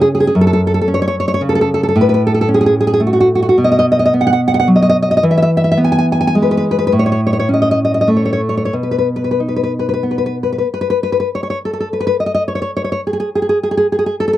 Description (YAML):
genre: romantic piece for solo classical guitar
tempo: 88-116 BPM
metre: 3/4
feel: rubato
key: unclear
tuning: A4 = 439 Hz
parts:
  - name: nylon-string guitar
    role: solo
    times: 0.0-14.4 s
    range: F#2 to G#5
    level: -12 LUFS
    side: equal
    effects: none
room: light reverb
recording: dry, close 1970s-style studio recording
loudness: -12 LUFS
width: side -13 dB against mid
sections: 0.0-10.7 A section; 10.7-14.4 B section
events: none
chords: 0.3 F#5; 2.0 Amaj13; 3.6 B5; 5.2 E; 6.9 A; 8.7 B; 10.7 N.C.